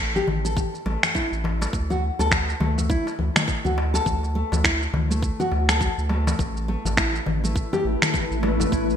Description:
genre	organic downtempo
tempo	103 BPM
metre	4/4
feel	swing 59% on 16ths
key	unclear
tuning	A4 = 439 Hz
part	nylon-string guitar	arpeggios	0.0-8.9 s	A3 to A4	-27 LUFS	equal	ping-pong delay
part	round analog bass	bass	0.0-9.0 s	A1 to D2	-25 LUFS	equal	sidechain pumping
part	electronic congas, shaker and finger snaps	drums	0.2-9.0 s	none	-25 LUFS	left 1 dB	gated reverb
part	darbuka	percussion	0.3-8.7 s	none	-33 LUFS	left 3 dB	none
part	electronic kick drum	drums	0.6-8.9 s	none	-26 LUFS	equal	none
part	granular cloud pad	sustained chords	7.3-9.0 s	A3 to B4	-27 LUFS	left 2 dB	built-in reverb, sidechain pumping
room	moderate lush hall reverb, RT60 1.9 s, digital ambience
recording	bright 1980s-style digital production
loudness	-20 LUFS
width	side -8 dB against mid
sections	0.0-9.0 A section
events	none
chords	0.0 A5; 1.7 D5; 6.4 A5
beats	0.57 1.15 | 1.73 2.31 2.90 3.48 | 4.06 4.64 5.23 5.81 | 6.39 6.97 7.56 8.14 | 8.72

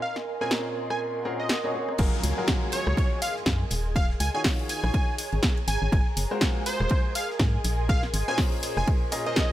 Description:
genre	piano house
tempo	122 BPM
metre	4/4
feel	swing 58% on 16ths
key	Bb minor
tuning	A4 = 441 Hz
part	plucky unison lead	melody	0.0-9.5 s	C5 to Ab5	-32 LUFS	right 1 dB	dub echo
part	analog string pad	sustained chords	0.0-9.5 s	Ab4 to C6	-38 LUFS	right 1 dB	ensemble chorus, sidechain pumping
part	granular cloud pad	texture	0.0-9.5 s	Ab4 to C6	-36 LUFS	right 1 dB	built-in reverb, sidechain pumping
part	punchy analog drum machine	drums	0.2-9.5 s	crash cymbal, hi-hat, rim click, snare drum	-29 LUFS	equal	none
part	bright upright piano	riff	0.4-9.5 s	Bb2 to Eb5	-33 LUFS	left 1 dB	sidechain pumping, dub echo
part	swell and downlifter	sound effects	1.1-5.9 s	none	-39 LUFS	equal	none
part	organ-like FM bass	bass	2.0-8.8 s	Eb1 to Ab2	-27 LUFS	equal	sidechain pumping
part	damped 70s drum kit	drums	2.0-9.5 s	hi-hat, ride cymbal, snare drum	-41 LUFS	right 3 dB	high-pass filter on cymbals, high-pass filter on hats, high-pass filter on snare, high-pass filter on room
part	electronic kick drum	drums	2.0-9.5 s	none	-25 LUFS	equal	none
room	light reverb, small room ambience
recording	none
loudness	-23 LUFS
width	side -14 dB against mid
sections	0.0-2.0 A section; 2.0-9.5 B section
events	swell 1.1-2.0; drop 2.0-9.5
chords	0.0 Bbm9; 2.0 Gbmaj9; 3.7 Ebm11; 5.7 Ab13; 7.6 Bbm9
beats	| 0.02 0.51 1.01 1.50 | 1.99 2.48 2.97 3.46 | 3.96 4.45 4.94 5.43 | 5.92 6.42 6.91 7.40 | 7.89 8.38 8.88 9.37

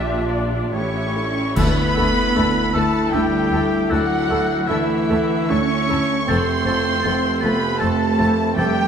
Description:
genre	cinematic, emotional film score for orchestra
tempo	77 BPM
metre	3/4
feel	rubato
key	unclear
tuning	A4 = 440 Hz
part	muted studio violin section	melody	0.0-8.9 s	E#4 to C#6	-25 LUFS	right 1 dB	none
part	muted violin	melody	0.0-1.6 s	C#5 to E5	-35 LUFS	left 3 dB	none
part	clear clarinet	second line	0.0-8.7 s	E#4 to A4	-30 LUFS	left 2 dB	none
part	muted studio violin section	second line	0.0-8.7 s	C4 to A4	-33 LUFS	right 2 dB	none
part	silver concert flute	second line	0.0-8.7 s	C#5 to A6	-32 LUFS	right 2 dB	none
part	warm oboe	second line	0.0-8.9 s	E4 to D5	-26 LUFS	left 3 dB	none
part	clear concert grand piano	accompaniment	0.0-8.9 s	F1 to D5	-24 LUFS	right 4 dB	none
part	muted studio viola section	accompaniment	0.0-8.7 s	A3 to E4	-30 LUFS	equal	none
part	muted studio cello section	bass	0.0-8.9 s	A2 to C#4	-25 LUFS	equal	none
part	muted studio double bass section	bass	0.0-8.7 s	F1 to D2	-28 LUFS	equal	none
part	mellow French horn section	sustained chords	1.6-8.9 s	C3 to E4	-24 LUFS	equal	none
part	clash cymbals and concert bass drum	percussion	1.6-3.1 s	none	-28 LUFS	equal	none
part	timpani	percussion	1.6-2.7 s	D3	-27 LUFS	equal	none
room	wet cathedral reverb, RT60 5.0 s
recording	in a vast, echoing space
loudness	-17 LUFS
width	side -7 dB against mid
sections	0.0-1.6 A section; 1.6-8.9 B section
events	band accent 1.6-2.3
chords	0.0 A#; 0.7 A7; 1.6 Dsus2; 6.3 F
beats	0.72 | 1.56 2.35 3.13 | 3.90 4.68 5.49 | 6.27 7.04 7.80 | 8.56

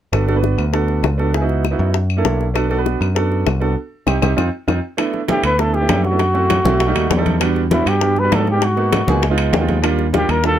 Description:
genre	Afro-Cuban jazz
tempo	198 BPM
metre	4/4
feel	straight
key	G major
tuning	A4 = 445 Hz
part	clear baby grand piano	accompaniment	0.1-10.6 s	G3 to G5	-20 LUFS	right 5 dB	none
part	picked electric bass	bass	0.1-10.6 s	G1 to Ab2	-18 LUFS	left 1 dB	none
part	bongos	percussion	0.1-10.6 s	none	-22 LUFS	left 10 dB	none
part	claves	percussion	0.1-10.4 s	none	-28 LUFS	left 11 dB	none
part	congas	percussion	5.0-10.6 s	none	-23 LUFS	left 2 dB	none
part	timbales	percussion	5.0-10.4 s	none	-26 LUFS	right 4 dB	none
part	breathy trumpet	melody	5.3-10.6 s	E4 to B4	-18 LUFS	left 1 dB	none
room	little or no reverb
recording	close, detailed microphones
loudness	-15 LUFS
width	side -10 dB against mid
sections	0.1-5.0 A section; 5.0-10.6 B section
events	band accent 3.8-5.0; grand piano fill 9.2-9.8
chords	0.1 Gmaj9; 1.3 C#m9; 1.9 F#7alt; 2.6 Bm7; 3.8 Cm; 4.4 F5; 5.0 G6; 6.2 F#m7b5; 6.8 B7b13; 7.4 Em7; 8.6 Abm7; 9.2 C#9; 9.8 Ebmaj9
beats	| 0.13 0.43 0.74 1.04 | 1.34 1.65 1.95 2.25 | 2.56 2.86 3.16 3.47 | 3.77 4.07 4.38 4.68 | 4.98 5.29 5.59 5.89 | 6.20 6.50 6.80 7.11 | 7.41 7.72 8.02 8.32 | 8.63 8.93 9.23 9.54 | 9.84 10.14 10.45

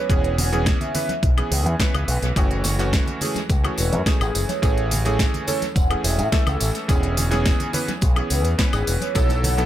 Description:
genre	nu-disco, nu disco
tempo	106 BPM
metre	4/4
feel	straight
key	E major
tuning	A4 = 440 Hz
part	vibraphone with soft mallets	melody	0.0-9.6 s	G#4 to F#5	-29 LUFS	right 2 dB	dub echo
part	clear electric grand piano	accompaniment	0.0-9.7 s	E3 to B4	-26 LUFS	right 2 dB	dub echo
part	picked electric bass with an envelope filter	bass	0.1-9.7 s	E1 to A2	-22 LUFS	equal	none
part	electronic kick drum	drums	0.1-9.3 s	none	-20 LUFS	equal	none
part	pop drum kit	drums	0.1-9.7 s	hi-hat, snare drum, tambourine, woodblock	-27 LUFS	equal	dub echo
part	congas and tambourine	percussion	0.4-9.7 s	none	-31 LUFS	left 1 dB	none
room	light reverb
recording	echo-heavy mix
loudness	-18 LUFS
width	side -12 dB against mid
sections	0.0-9.7 A section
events	none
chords	0.0 E6; 2.4 F#m7; 4.6 Amaj7; 6.9 E6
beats	| 0.10 0.67 1.23 1.80 | 2.36 2.93 3.50 4.06 | 4.63 5.19 5.76 6.33 | 6.89 7.46 8.02 8.59 | 9.16

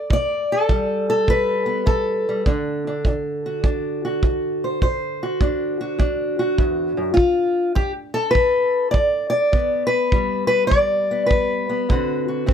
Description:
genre	acoustic country blues, solo or duo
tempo	102 BPM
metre	4/4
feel	swing 67% on 8ths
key	unclear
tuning	A4 = 440 Hz
part	fingerpicked steel-string acoustic guitar	melody	0.0-12.5 s	D2 to D5	-19 LUFS	left 1 dB	none
part	kick drum	drums	0.1-12.5 s	none	-20 LUFS	right 1 dB	none
room	light reverb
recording	none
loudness	-18 LUFS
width	side -8 dB against mid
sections	0.0-12.5 A section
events	none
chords	0.1 G; 2.5 D7; 7.2 G; 11.9 D7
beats	| 0.09 0.68 1.27 1.86 | 2.45 3.04 3.63 4.22 | 4.81 5.40 5.99 6.58 | 7.17 7.76 8.35 8.94 | 9.53 10.12 10.71 11.29 | 11.88 12.47

